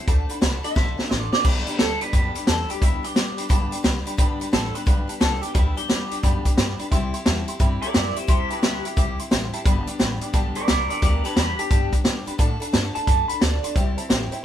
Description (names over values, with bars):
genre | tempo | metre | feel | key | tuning
rockabilly | 176 BPM | 4/4 | swing 64% on 8ths | G major | A4 = 440 Hz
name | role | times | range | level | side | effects
electric guitar through a small old amp | melody | 0.0-14.1 s | E4 to B5 | -27 LUFS | right 1 dB | phaser
honky-tonk upright piano | accompaniment | 0.0-14.4 s | C5 to D6 | -33 LUFS | right 4 dB | none
picked steel-string acoustic guitar | accompaniment | 0.0-14.4 s | G2 to A4 | -31 LUFS | left 4 dB | none
upright bass | bass | 0.1-14.4 s | G1 to B2 | -28 LUFS | equal | none
vintage drum kit | drums | 0.1-14.4 s | crash cymbal, hi-hat, kick drum, snare drum | -21 LUFS | equal | none
room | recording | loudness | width
little or no reverb | band playing live in one room | -19 LUFS | side -11 dB against mid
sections
0.0-1.4 A section; 1.4-14.4 A section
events
drum fill 0.8-1.4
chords
0.1 D; 1.4 G; 12.4 D; 13.8 C